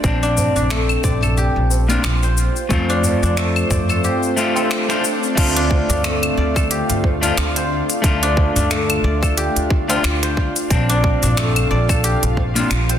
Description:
organic downtempo; 90 BPM; 4/4; swing 56% on 16ths; D minor pentatonic; A4 = 440 Hz
electric guitar at the edge of break-up; accompaniment; 0.0-12.7 s; A3 to F4; -23 LUFS; left 2 dB; vibrato effect, sidechain pumping, tape echo
bowed-like drone; sustained chords; 0.0-13.0 s; A3 to F5; -25 LUFS; right 1 dB; built-in reverb, sidechain pumping
guzheng; arpeggios; 0.0-13.0 s; A3 to D5; -23 LUFS; left 1 dB; tape echo
upright bass; bass; 0.0-13.0 s; Bb1 to F2; -20 LUFS; equal; sidechain pumping
electronic kick drum; drums; 0.0-12.5 s; -19 LUFS; equal; overdrive
organic electronic drum kit; drums; 0.0-13.0 s; claves, crash cymbal, finger snaps, hi-hat, shaker; -23 LUFS; left 2 dB; overdrive, soft clipping on snare
tabla; percussion; 0.2-13.0 s; -28 LUFS; equal
swell; sound effects; 4.4-5.4 s; -29 LUFS; right 3 dB
light reverb, digital ambience; dense, heavily limited modern master; -15 LUFS; side -10 dB against mid
0.0-5.4 A section; 5.4-13.0 B section
swell 4.4-5.4
0.0 Bbadd9; 2.7 F; 5.4 Dm; 10.7 Bbadd9
| 0.04 0.71 1.37 2.04 | 2.71 3.37 4.04 4.71 | 5.37 6.04 6.71 7.37 | 8.04 8.71 9.37 10.04 | 10.71 11.37 12.04 12.71

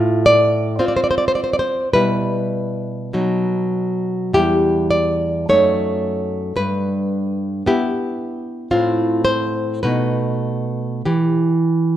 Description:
romantic piece for solo classical guitar; 47-58 BPM; 2/4; rubato; E minor; A4 = 440 Hz
nylon-string guitar; solo; 0.0-12.0 s; E2 to D5; -16 LUFS; equal
moderate recital hall reverb, RT60 1.6 s; minimal, uncompressed stereo recording; -16 LUFS; side -12 dB against mid
0.0-12.0 A section
0.0 F/A; 1.9 Em/B; 3.1 B; 4.4 Em; 5.5 D#dim/F#; 6.6 Em/G; 8.7 F/A; 9.8 B7; 11.0 Em
0.82 | 1.93 3.15 | 4.36 5.50 | 6.58 7.66 | 8.71 9.82 | 11.04

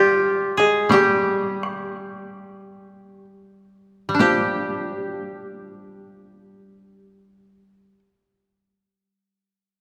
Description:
japanese traditional, Japanese chamber music; 31-46 BPM; 2/4; rubato; A4 = 440 Hz
koto; melody; 0.0-8.0 s; F4 to Ab4; -24 LUFS; equal
shamisen; second line; 0.0-8.0 s; G3 to Ab3; -25 LUFS; equal
koto; accompaniment; 0.0-8.0 s; G3 to G4; -28 LUFS; equal
solo taiko drums; percussion; 0.9-5.1 s; -28 LUFS; equal
wet church reverb, RT60 2.8 s; -21 LUFS; mono
0.0-4.2 A section; 4.2-8.0 B section
slowing down 0.0-4.2
| 0.90 2.41 | 4.19 6.08

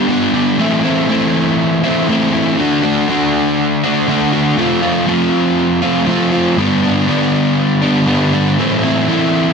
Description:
rock; 120 BPM; 4/4; straight; A minor; A4 = 440 Hz
overdriven semi-hollow guitar; solo; 0.0-9.5 s; G2 to G4; -12 LUFS; equal
moderate large studio reverb, RT60 1.4 s; dense, heavily limited modern master; -12 LUFS; side -5 dB against mid
0.6-9.5 A section
0.0 G; 0.6 Am; 2.6 D; 4.6 F; 6.6 G; 8.6 Am
0.09 | 0.59 1.09 1.59 2.09 | 2.59 3.09 3.59 4.09 | 4.59 5.09 5.59 6.08 | 6.58 7.08 7.58 8.08 | 8.58 9.08

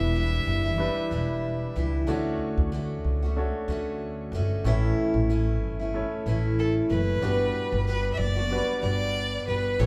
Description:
acoustic pop; 93 BPM; 4/4; swing 55% on 16ths; A4 = 439 Hz
rich fiddle; melody; 0.0-1.8, 6.6-9.9 s; A4 to E5; -32 LUFS; equal
picked steel-string acoustic guitar; accompaniment; 0.0-9.9 s; E2 to G4; -33 LUFS; equal
warm concert grand piano; accompaniment; 0.0-9.9 s; G3 to C#5; -35 LUFS; equal
upright bass; bass; 0.0-9.9 s; E1 to D2; -30 LUFS; equal
wet large studio reverb, RT60 1.1 s; band playing live in one room; -27 LUFS; mono
0.0-9.9 A section
0.0 Em7; 2.1 Dmaj7; 4.7 A; 7.2 Gmaj7
0.15 0.80 1.44 | 2.08 2.73 3.37 4.01 | 4.66 5.30 5.95 6.59 | 7.23 7.88 8.52 9.16 | 9.81

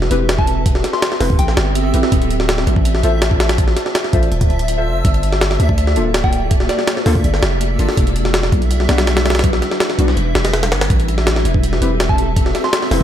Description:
drum and bass, jungle; 164 BPM; 4/4; straight; A minor; A4 = 440 Hz
long sustained 808-style bass; bass; 0.0-13.0 s; D1 to D2; -17 LUFS; equal
jungle sampler-style drum kit; drums; 0.0-13.0 s; hi-hat, kick drum, snare drum; -16 LUFS; equal
backwards swelling texture; texture; 0.2-13.0 s; E5; -28 LUFS; equal; built-in reverb
deep mellow chord stab; stabs; 0.1-13.0 s; G3 to E5; -24 LUFS; left 3 dB; chorus, dub echo
soft synth bell; melody; 0.4-1.9, 6.2-7.1, 12.1-13.0 s; D5 to C6; -25 LUFS; equal; chorus, dub echo
little or no reverb; -13 LUFS; side -10 dB against mid
0.0-13.0 A section
0.0 Am9; 2.1 Dm9; 5.0 Gm9; 8.0 Em9; 10.9 Am9
0.29 | 0.66 1.02 1.39 1.75 | 2.12 2.49 2.85 3.22 | 3.58 3.95 4.32 4.68 | 5.05 5.41 5.78 6.14 | 6.51 6.88 7.24 7.61 | 7.97 8.34 8.71 9.07 | 9.44 9.80 10.17 10.54 | 10.90 11.27 11.63 12.00 | 12.37 12.73

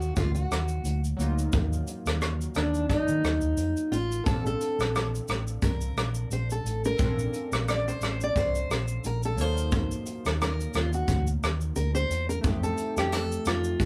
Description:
indie pop, bedroom pop; 88 BPM; 4/4; swing 55% on 16ths; Bb major; A4 = 440 Hz
chorused retro synth keys; accompaniment; 0.0-13.9 s; Gb3 to A4; -40 LUFS; equal
fingerpicked steel-string acoustic guitar; accompaniment; 0.0-13.9 s; D4 to D5; -32 LUFS; equal; warbly pitch drift
vintage muted fingered electric bass; bass; 0.0-13.9 s; A1 to F3; -32 LUFS; equal
soft brush drum kit; drums; 0.0-13.9 s; hi-hat, kick drum, rim click, shaker; -32 LUFS; equal
wet booth ambience, RT60 0.2 s; rough rehearsal-room recording; -28 LUFS; mono
0.0-13.9 A section
steel-string acoustic guitar solo 0.0-13.9
0.0 Ebmadd9; 4.3 Bbmaj7; 9.4 Ebmadd9; 12.4 F7
0.17 0.85 | 1.54 2.22 2.90 3.58 | 4.26 4.95 5.63 6.31 | 6.99 7.67 8.35 9.04 | 9.72 10.40 11.08 11.76 | 12.45 13.13 13.81

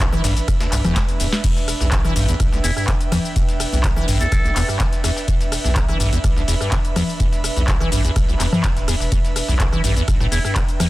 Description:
acid house; 125 BPM; 4/4; straight; E minor; A4 = 439 Hz
liquid acid bass; riff; 0.0-10.9 s; D2 to E3; -23 LUFS; equal; wide subtle chorus, sidechain pumping, tape echo
saturated sub bass; bass; 0.0-10.4 s; D1 to B1; -23 LUFS; equal; sidechain pumping
booming analog drum machine; drums; 0.0-10.9 s; cabasa, congas, crash cymbal, handclaps, hi-hat, ride cymbal, rim click, snare drum; -24 LUFS; left 1 dB
dusty soul sampler-style drum kit; drums; 0.0-10.9 s; hi-hat, snare drum; -35 LUFS; equal
electronic kick drum; drums; 0.0-10.7 s; -20 LUFS; equal
airy breathy pad; texture; 0.0-10.9 s; D4 to B5; -28 LUFS; right 2 dB; chorus, sidechain pumping
trumpet with metal mute; melody; 2.6-4.7, 10.3-10.5 s; E4 to A4; -28 LUFS; equal; vintage 12-bit sampler grit, dub echo
little or no reverb; dense, heavily limited modern master; -16 LUFS; side -18 dB against mid
0.0-10.9 A section
drum fill 1.0-1.4
0.0 Em7
0.00 0.48 0.96 | 1.44 1.92 2.40 2.88 | 3.36 3.84 4.32 4.80 | 5.28 5.76 6.24 6.72 | 7.20 7.68 8.16 8.64 | 9.12 9.60 10.08 10.56

